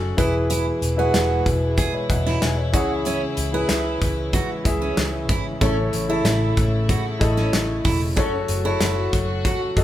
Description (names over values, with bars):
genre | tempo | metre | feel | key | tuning
piano-driven pop | 94 BPM | 4/4 | straight | E major | A4 = 440 Hz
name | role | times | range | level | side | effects
dark baby grand piano | accompaniment | 0.0-9.8 s | A2 to G#5 | -24 LUFS | left 2 dB | none
warm studio string section | sustained chords | 0.0-9.8 s | B2 to F#4 | -30 LUFS | equal | none
vintage muted picked electric bass | bass | 0.0-9.8 s | E1 to C#2 | -25 LUFS | equal | none
picked steel-string acoustic guitar | riff | 0.2-9.6 s | C#4 to G#4 | -28 LUFS | right 6 dB | none
modern studio drum kit | drums | 0.2-9.8 s | handclaps, hi-hat, kick drum, snare drum | -24 LUFS | equal | none
room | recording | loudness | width
moderate large studio reverb, RT60 1.3 s | band playing live in one room | -19 LUFS | side -12 dB against mid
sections
0.0-9.8 A section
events
none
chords
0.2 E; 2.7 C#m; 5.6 A; 8.2 F#m